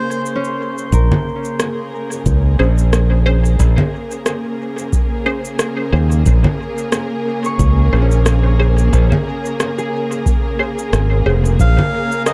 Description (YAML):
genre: ambient dub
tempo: 90 BPM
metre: 4/4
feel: swing 56% on 16ths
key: Bb minor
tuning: A4 = 438 Hz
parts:
  - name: melodica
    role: melody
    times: 0.0-0.2, 11.6-12.3 s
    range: C5 to F5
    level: -27 LUFS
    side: equal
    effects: dub echo
  - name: dark studio string section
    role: sustained chords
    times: 0.0-12.3 s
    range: Db3 to Bb4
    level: -25 LUFS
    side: equal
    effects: none
  - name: drifting glass-harmonics texture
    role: texture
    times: 0.0-0.9, 11.9-12.3 s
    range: Bb4 to C6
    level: -34 LUFS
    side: equal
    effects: chorus, built-in reverb
  - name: electronic shaker, congas and rim click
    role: drums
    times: 0.1-12.3 s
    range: none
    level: -22 LUFS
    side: equal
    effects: overdrive, dub echo
  - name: concert harp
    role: arpeggios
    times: 0.4-3.3, 7.5-12.1 s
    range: Db4 to Db6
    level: -30 LUFS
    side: equal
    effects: tape echo
  - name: modern bright fingered electric bass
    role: bass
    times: 0.9-11.8 s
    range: F1 to Eb2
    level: -15 LUFS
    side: equal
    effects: none
  - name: electronic kick drum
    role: drums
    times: 0.9-11.7 s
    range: none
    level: -20 LUFS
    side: equal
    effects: none
  - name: filtered dub chord stab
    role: stabs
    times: 2.6-11.4 s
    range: Db4 to C5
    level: -27 LUFS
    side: equal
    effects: phaser, analog chorus, dub echo
room: digital ambience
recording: none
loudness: -16 LUFS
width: mono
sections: 0.9-12.3 A section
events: break 0.0-0.9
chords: 0.0 Bbm9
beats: 0.26 | 0.93 1.59 2.26 2.93 | 3.60 4.26 4.93 5.59 | 6.26 6.93 7.59 8.26 | 8.93 9.60 10.26 10.93 | 11.60 12.26